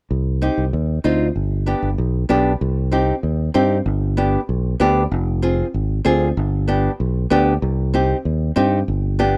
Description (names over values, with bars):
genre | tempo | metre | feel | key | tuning
latin, cumbia | 192 BPM | 4/4 | straight | C harmonic minor | A4 = 441 Hz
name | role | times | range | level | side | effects
fingered electric bass | bass | 0.1-9.4 s | F1 to G2 | -22 LUFS | equal | none
nylon-string guitar | accompaniment | 0.4-9.4 s | B3 to Ab4 | -21 LUFS | equal | none
room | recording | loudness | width
small room ambience | dry, close 1970s-style studio recording | -19 LUFS | mono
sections
0.1-2.6 A section; 2.6-9.4 B section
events
none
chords
0.1 Cm; 1.4 G; 2.6 Cm; 3.9 G; 5.1 Fm; 6.4 G; 7.6 Cm